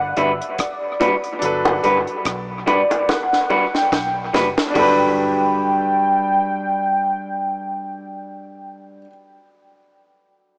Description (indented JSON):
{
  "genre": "lovers rock reggae",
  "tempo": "72 BPM",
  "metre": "4/4",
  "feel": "swing 56% on 16ths",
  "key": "G major",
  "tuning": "A4 = 440 Hz",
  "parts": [
    { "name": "warm velvety synth lead", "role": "melody", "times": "0.0-8.8 s", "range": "C#5 to G5", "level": "-23 LUFS", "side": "equal", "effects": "chorus, dub echo" },
    { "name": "bright grand piano", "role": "accompaniment", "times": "0.0-10.6 s", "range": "F#3 to B4", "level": "-26 LUFS", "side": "equal", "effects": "none" },
    { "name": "vintage muted fingered electric bass", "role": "bass", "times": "0.0-9.0 s", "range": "F#1 to B1", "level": "-37 LUFS", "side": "equal", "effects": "none" },
    { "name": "electric guitar through a small old amp", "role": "stabs", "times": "0.2-9.1 s", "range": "G3 to B4", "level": "-24 LUFS", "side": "equal", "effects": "dub echo" },
    { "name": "deep reggae drum kit", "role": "drums", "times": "0.2-5.0 s", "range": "hi-hat, kick drum, rim click, snare drum", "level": "-28 LUFS", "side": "equal", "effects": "dub echo" },
    { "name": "bongos", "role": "percussion", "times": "1.0-5.1 s", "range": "none", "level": "-28 LUFS", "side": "equal", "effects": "dub echo" }
  ],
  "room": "moderate lush hall reverb, RT60 3.3 s",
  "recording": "rough home demo mix, small speaker sound",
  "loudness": "-19 LUFS",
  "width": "mono",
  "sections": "0.0-4.8 A section; 4.8-8.1 B section",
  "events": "drum fill 3.1-4.8",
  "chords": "0.0 Gmaj7",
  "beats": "0.59 | 1.42 2.26 3.09 3.92 | 4.76 5.59 6.42 7.25"
}